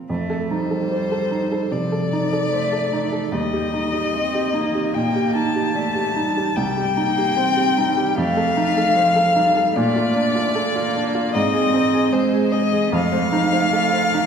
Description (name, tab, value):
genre	neoclassical piano and strings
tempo	75 BPM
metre	4/4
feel	rubato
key	unclear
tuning	A4 = 440 Hz
part	felt-muted upright piano	accompaniment	0.0-14.3 s	C2 to Eb5	-22 LUFS	right 2 dB	none
part	clear cello	second line	0.1-14.3 s	F3 to C4	-24 LUFS	right 3 dB	none
part	dark violin	melody	0.5-14.3 s	C5 to A5	-21 LUFS	left 3 dB	none
room	wet concert hall reverb, RT60 2.5 s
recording	heard from further back in the room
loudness	-17 LUFS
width	side -7 dB against mid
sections	0.1-14.3 A section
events	none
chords	0.1 F7; 3.3 Ebmaj7; 6.6 Cm; 8.2 F7; 9.8 Bbmaj7; 11.4 Ab; 12.9 F7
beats	| 0.09 0.90 1.71 2.52 | 3.32 4.13 4.95 5.76 | 6.57 7.37 8.17 8.97 | 9.77 10.56 11.36 12.15 | 12.94 13.74